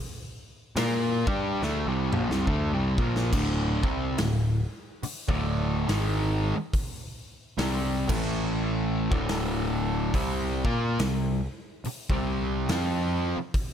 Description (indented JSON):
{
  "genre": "stoner and doom metal",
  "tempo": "70 BPM",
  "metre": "4/4",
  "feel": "swing 60% on 8ths",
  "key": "unclear",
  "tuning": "A4 = 441 Hz",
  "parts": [
    { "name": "fuzz guitar", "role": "riff", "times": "0.8-13.4 s", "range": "D2 to Bb4", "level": "-27 LUFS", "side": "equal", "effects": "distortion" },
    { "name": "growling picked electric bass", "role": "bass", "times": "0.8-13.4 s", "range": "D1 to Bb2", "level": "-30 LUFS", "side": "equal", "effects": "overdrive, tube saturation" },
    { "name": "big rock drum kit", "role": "drums", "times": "0.8-13.7 s", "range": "crash cymbal, hi-hat, kick drum, snare drum, toms", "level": "-31 LUFS", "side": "equal", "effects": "none" }
  ],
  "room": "light reverb, studio reverb",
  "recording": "none",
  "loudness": "-25 LUFS",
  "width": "side -9 dB against mid",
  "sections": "0.0-13.7 A section",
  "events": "drum fill 1.6-3.3",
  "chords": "0.0 C5; 3.3 D5; 8.0 A5; 9.1 D5; 10.1 C5"
}